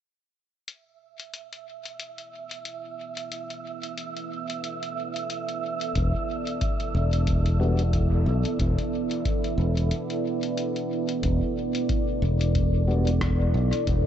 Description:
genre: ambient dub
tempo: 91 BPM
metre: 4/4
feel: swing 57% on 16ths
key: unclear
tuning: A4 = 441 Hz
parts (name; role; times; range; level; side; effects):
- deep dark ambient pad; sustained chords; 2.8-14.1 s; B3 to D5; -29 LUFS; right 2 dB; chorus, built-in reverb
- lo-fi sampler-style drum kit; drums; 0.7-14.0 s; hi-hat, rim click; -36 LUFS; left 4 dB; dub echo
- wind-like tuned noise texture; texture; 1.2-11.2 s; E5; -36 LUFS; right 6 dB; built-in reverb
- modern bright fingered electric bass; bass; 6.0-14.0 s; E1 to B1; -22 LUFS; equal; tube saturation
- electronic kick drum; drums; 6.0-14.0 s; none; -29 LUFS; left 1 dB; none
- tonewheel organ; stabs; 7.6-7.8, 12.9-13.1 s; G3 to F#4; -33 LUFS; left 3 dB; overdrive, slow rotary speaker, dub echo
room: light reverb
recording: nothing above 7.9 kHz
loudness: -23 LUFS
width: side -10 dB against mid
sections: 0.7-11.2 A section; 11.2-14.1 B section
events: fade-in on ambient pad 0.7-11.2; break 9.9-11.2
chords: 0.7 E7(no3)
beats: | 0.68 1.34 2.00 2.66 | 3.32 3.98 4.64 5.30 | 5.96 6.62 7.28 7.94 | 8.60 9.26 9.91 10.57 | 11.23 11.89 12.55 13.21 | 13.87

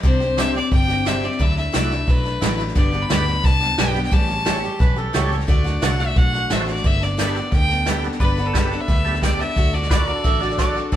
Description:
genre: honky-tonk and classic country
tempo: 176 BPM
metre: 4/4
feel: straight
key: G major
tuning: A4 = 440 Hz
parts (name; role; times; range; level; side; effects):
- picked steel-string acoustic guitar; accompaniment; 0.0-11.0 s; G2 to A4; -26 LUFS; left 3 dB; none
- vintage muted picked electric bass; bass; 0.0-11.0 s; G1 to D2; -24 LUFS; equal; none
- vintage brush drum kit; drums; 0.0-11.0 s; hi-hat, kick drum, snare drum; -20 LUFS; equal; none
- clear fiddle; melody; 0.1-11.0 s; A4 to B5; -24 LUFS; left 1 dB; none
- overdriven tonewheel organ; accompaniment; 0.4-10.8 s; D4 to D5; -28 LUFS; right 4 dB; slow rotary speaker, chorus vibrato
- overdriven harmonica; second line; 4.6-5.4, 10.3-10.8 s; E4 to E5; -26 LUFS; right 4 dB; none
- pedal steel guitar; sustained chords; 8.2-11.0 s; A4 to D5; -30 LUFS; equal; none
room: moderate stone room reverb, RT60 1.0 s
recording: band playing live in one room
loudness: -17 LUFS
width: side -11 dB against mid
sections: 0.0-8.2 A section; 8.2-11.0 B section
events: none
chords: 0.0 Csus2; 1.4 Dadd9; 2.8 G; 4.1 A7; 5.5 D; 6.8 Gadd9; 9.6 D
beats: | 0.04 0.38 0.72 1.06 | 1.40 1.74 2.08 2.42 | 2.76 3.10 3.44 3.79 | 4.13 4.47 4.81 5.15 | 5.49 5.83 6.17 6.51 | 6.85 7.19 7.53 7.87 | 8.21 8.55 8.89 9.23 | 9.57 9.90 10.24 10.59 | 10.93

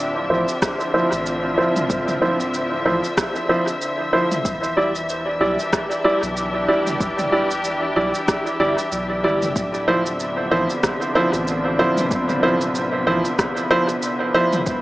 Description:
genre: ambient dub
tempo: 94 BPM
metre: 4/4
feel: swing 57% on 16ths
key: D dorian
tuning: A4 = 438 Hz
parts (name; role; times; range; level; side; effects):
- muted studio string section; sustained chords; 0.0-14.8 s; C3 to E5; -24 LUFS; left 1 dB; none
- soft dub sub bass; bass; 0.0-14.8 s; D1 to B1; -32 LUFS; equal; none
- clear upright piano; stabs; 0.3-14.6 s; F3 to D5; -20 LUFS; right 1 dB; low-pass filter, dub echo
- organic electronic drum kit; drums; 0.5-14.8 s; rim click, shaker, toms; -27 LUFS; equal; dub echo
- electronic kick drum; drums; 0.6-14.8 s; none; -26 LUFS; equal; none
- drifting glass-harmonics texture; texture; 10.2-14.8 s; B3 to B4; -29 LUFS; equal; chorus, built-in reverb
room: wet spring reverb, RT60 1.9 s, digital ambience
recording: echo-heavy mix, small speaker sound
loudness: -18 LUFS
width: side -18 dB against mid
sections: 0.0-14.8 A section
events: filter sweep on upright piano 0.0-14.8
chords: 0.0 Dm9; 4.5 Em7; 9.6 Dm9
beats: 0.62 1.26 | 1.90 2.54 3.17 3.81 | 4.45 5.09 5.73 6.37 | 7.00 7.64 8.28 8.92 | 9.56 10.20 10.83 11.47 | 12.11 12.75 13.39 14.03 | 14.66

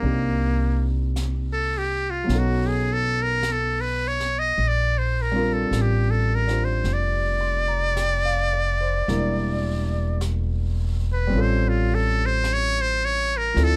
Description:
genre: jazz ballad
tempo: 53 BPM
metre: 4/4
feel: swing 67% on 8ths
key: unclear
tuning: A4 = 440 Hz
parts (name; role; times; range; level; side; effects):
- trumpet with metal mute; melody; 0.0-13.8 s; Bb3 to D#5; -26 LUFS; equal; none
- warm grand piano; accompaniment; 0.0-13.8 s; F3 to C6; -31 LUFS; equal; none
- upright bass; bass; 0.0-13.8 s; E1 to D2; -26 LUFS; equal; none
- jazz brush drum kit; drums; 0.0-13.8 s; brushed snare drum, hi-hat, snare drum; -43 LUFS; equal; none
room: little or no reverb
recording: dark, warm production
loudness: -23 LUFS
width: mono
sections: 0.0-13.8 A section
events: muted trumpet solo 0.0-13.8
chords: 0.0 Cm7; 2.3 B9; 4.6 Bb6; 9.1 Em7b5; 11.3 A7alt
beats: | 0.03 1.16 2.29 3.44 | 4.58 5.72 6.85 7.97 | 9.09 10.21 11.33 12.44 | 13.56

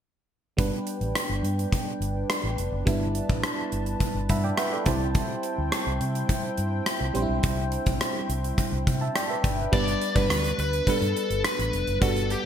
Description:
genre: 1980s-style pop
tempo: 105 BPM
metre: 4/4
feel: straight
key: G major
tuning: A4 = 440 Hz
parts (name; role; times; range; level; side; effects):
- FM electric piano; accompaniment; 0.6-12.5 s; G3 to B5; -30 LUFS; right 3 dB; chorus
- warm analog pad; sustained chords; 0.6-9.7 s; D4 to A5; -34 LUFS; left 1 dB; chorus, tremolo
- vintage muted fingered electric bass; bass; 0.6-12.3 s; F1 to C3; -29 LUFS; equal; none
- gated 80s drum kit; drums; 0.6-12.4 s; crash cymbal, hi-hat, kick drum, rim click; -27 LUFS; equal; gated reverb
- biting lead guitar; melody; 9.7-12.5 s; G4 to D5; -28 LUFS; left 5 dB; overdrive
room: moderate plate reverb, RT60 2.2 s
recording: bright 1980s-style digital production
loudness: -24 LUFS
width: side -9 dB against mid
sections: 0.6-9.7 A section; 9.7-12.5 B section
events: FM electric piano fill 4.0-5.2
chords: 0.6 G; 4.9 C; 9.4 G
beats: | 0.58 1.15 1.73 2.30 | 2.87 3.44 4.01 4.58 | 5.15 5.72 6.30 6.87 | 7.44 8.01 8.58 9.15 | 9.72 10.30 10.87 11.44 | 12.01

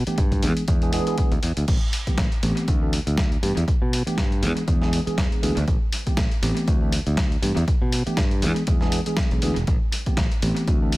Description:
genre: filtered disco house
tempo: 120 BPM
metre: 4/4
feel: swing 56% on 16ths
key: unclear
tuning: A4 = 440 Hz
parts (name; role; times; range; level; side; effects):
- modern bright fingered electric bass; bass; 0.0-11.0 s; E1 to B2; -25 LUFS; equal; tube saturation, sidechain pumping, low-pass filter
- tine electric piano; accompaniment; 0.1-10.9 s; E3 to A4; -26 LUFS; equal; phaser, sidechain pumping, low-pass filter
- dusty soul sampler-style drum kit; drums; 0.1-11.0 s; crash cymbal, hi-hat, snare drum; -29 LUFS; equal; overdrive, sidechain pumping on hats, sidechain pumping on cymbals, analog delay
- electronic kick drum; drums; 0.2-10.8 s; none; -23 LUFS; equal; none
room: digital ambience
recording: echo-heavy mix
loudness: -20 LUFS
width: side -19 dB against mid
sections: 0.0-11.0 A section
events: none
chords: 0.4 E7; 1.7 Am9; 2.7 D9; 3.4 G69; 4.4 E7; 5.7 Am9; 6.7 D9; 7.4 G69; 8.4 E7; 9.7 Am9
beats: 0.18 0.68 1.18 | 1.68 2.18 2.68 3.18 | 3.68 4.18 4.68 5.18 | 5.68 6.18 6.68 7.18 | 7.68 8.18 8.68 9.18 | 9.68 10.18 10.68

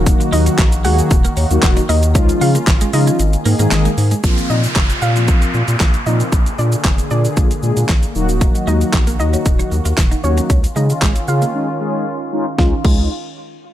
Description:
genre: dance-pop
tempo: 115 BPM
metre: 4/4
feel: straight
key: Db major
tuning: A4 = 440 Hz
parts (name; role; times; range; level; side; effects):
- mellow synth brass; accompaniment; 0.0-13.1 s; Eb3 to Ab4; -21 LUFS; left 2 dB; chorus, sidechain pumping, low-pass filter
- warm analog pad; sustained chords; 0.0-12.8 s; C3 to Ab4; -25 LUFS; equal; chorus, phaser, sidechain pumping, low-pass filter
- twelve-string electric guitar; riff; 0.0-4.2, 8.4-13.0 s; Ab3 to F4; -26 LUFS; right 4 dB; analog chorus, low-pass filter
- saturated sub bass; bass; 0.0-13.1 s; Eb1 to Db3; -16 LUFS; equal; sidechain pumping
- pop drum kit; drums; 0.1-13.0 s; crash cymbal, handclaps, hi-hat, kick drum, shaker, snare drum; -16 LUFS; equal; none
- soft round pluck; melody; 0.3-13.1 s; Db4 to Gb5; -24 LUFS; left 1 dB; chorus, low-pass filter, ping-pong delay
- downlifter; sound effects; 4.2-8.4 s; none; -24 LUFS; equal; none
room: digital ambience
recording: none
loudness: -13 LUFS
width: side -12 dB against mid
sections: 0.0-4.2 A section; 4.2-12.6 B section; 12.6-13.7 C section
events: drop 0.0-4.2; kick muted 3.2-4.2; filter sweep 4.2-12.6; break 11.5-12.6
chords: 0.0 Ebm; 2.2 Dbadd9; 3.2 Absus2; 4.2 Bbsus2; 6.3 Bb7; 8.2 Ebm; 10.5 Dbadd9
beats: | 0.06 0.59 1.11 1.63 | 2.15 2.67 3.19 3.72 | 4.24 4.76 5.28 5.80 | 6.33 6.85 7.37 7.89 | 8.41 8.93 9.46 9.98 | 10.50 11.02 11.54 12.06 | 12.59

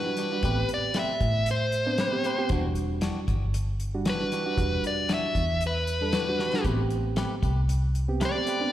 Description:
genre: straight-eighth soul blues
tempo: 116 BPM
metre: 4/4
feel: swing 56% on 16ths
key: unclear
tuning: A4 = 440 Hz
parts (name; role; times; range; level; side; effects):
- dark smooth lead guitar; melody; 0.0-8.7 s; B4 to E5; -28 LUFS; equal; overdrive, slapback echo
- clean electric guitar; stabs; 0.0-8.7 s; E3 to B4; -35 LUFS; left 4 dB; slapback echo, digital delay
- bright reed electric piano; accompaniment; 0.1-8.7 s; G3 to A4; -31 LUFS; right 4 dB; slapback echo
- damped 70s drum kit; drums; 0.2-8.6 s; hi-hat, kick drum, snare drum; -31 LUFS; equal; none
- vintage muted fingered electric bass; bass; 0.4-8.2 s; E1 to A2; -27 LUFS; equal; none
room: light reverb, small room ambience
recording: live gig heard through the venue's PA, recital hall reverb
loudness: -24 LUFS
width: side -12 dB against mid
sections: 0.0-8.7 A section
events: drum fill 6.4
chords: 0.4 Am9; 2.5 Em9; 6.7 Am9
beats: | 0.43 0.95 1.47 1.99 | 2.50 3.02 3.54 4.06 | 4.58 5.09 5.61 6.13 | 6.65 7.17 7.69 8.21

